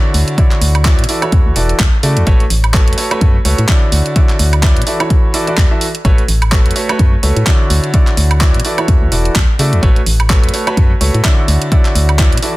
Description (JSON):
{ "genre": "piano house", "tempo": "127 BPM", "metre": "4/4", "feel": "swing 57% on 16ths", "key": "A major", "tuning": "A4 = 440 Hz", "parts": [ { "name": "clear concert grand piano", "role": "riff", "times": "0.0-12.5 s", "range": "D3 to E5", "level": "-18 LUFS", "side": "equal", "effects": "vintage 12-bit sampler grit, sidechain pumping, dub echo" }, { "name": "organ-like FM bass", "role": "bass", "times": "0.1-12.4 s", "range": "E1 to C#3", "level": "-13 LUFS", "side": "equal", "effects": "sidechain pumping" }, { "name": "garage drum kit", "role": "drums", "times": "0.1-12.5 s", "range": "handclaps, hi-hat, woodblock", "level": "-18 LUFS", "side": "right 2 dB", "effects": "overdrive, studio reverb" }, { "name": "electronic kick drum", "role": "drums", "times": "0.4-12.3 s", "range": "none", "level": "-12 LUFS", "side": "equal", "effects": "studio reverb" } ], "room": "studio reverb", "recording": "dense, heavily limited modern master", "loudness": "-10 LUFS", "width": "side -19 dB against mid", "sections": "0.0-12.6 A section", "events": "none", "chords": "0.1 Dmaj9; 1.1 E9sus4; 2.3 A69; 3.9 Dmaj9; 4.9 E9sus4; 6.0 A69; 7.7 Dmaj9; 8.6 E9sus4; 9.8 A69; 11.5 Dmaj9", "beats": "| 0.38 0.85 1.32 1.80 | 2.27 2.74 3.21 3.69 | 4.16 4.63 5.10 5.58 | 6.05 6.52 6.99 7.47 | 7.94 8.41 8.88 9.36 | 9.83 10.30 10.77 11.24 | 11.72 12.19" }